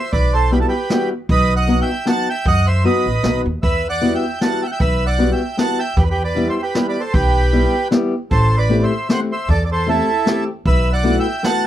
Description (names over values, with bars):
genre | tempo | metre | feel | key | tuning
musette waltz | 154 BPM | 3/4 | swing 54% on 8ths | E minor | A4 = 440 Hz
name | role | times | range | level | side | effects
accordion | melody | 0.0-11.7 s | E4 to A5 | -20 LUFS | right 3 dB | none
upright bass | bass | 0.1-11.2 s | A1 to F#2 | -18 LUFS | equal | none
jazz brush drum kit | drums | 0.1-11.5 s | hi-hat, kick drum, snare drum | -20 LUFS | equal | none
fingerpicked steel-string acoustic guitar | accompaniment | 0.5-11.6 s | F#3 to G4 | -19 LUFS | left 2 dB | none
room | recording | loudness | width
small room ambience | dry, close 1970s-style studio recording | -15 LUFS | side -12 dB against mid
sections
0.0-11.7 A section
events
none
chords
0.0 Emadd9; 1.3 B; 3.6 Emadd9; 6.0 Em; 8.3 Am7; 10.7 B7sus4